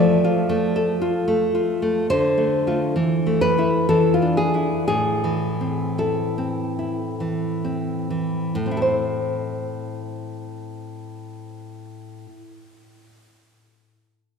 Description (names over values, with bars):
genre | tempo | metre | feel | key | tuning
romantic piece for solo classical guitar | 43-77 BPM | 3/4 | rubato | A minor | A4 = 440 Hz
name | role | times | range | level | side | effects
nylon-string guitar | solo | 0.0-12.5 s | A2 to D5 | -20 LUFS | equal | none
room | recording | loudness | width
wet church reverb, RT60 3.0 s | recorded in a church or concert hall | -19 LUFS | side -6 dB against mid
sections
0.0-8.6 A section; 8.6-12.6 B section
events
slowing down 0.9-8.6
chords
0.0 Dm/F; 2.1 Dm7; 2.9 Am/E; 3.9 E7; 4.9 Am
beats
0.48 1.28 | 2.09 2.95 3.88 | 4.89 6.00 7.21 | 8.56 9.91 11.24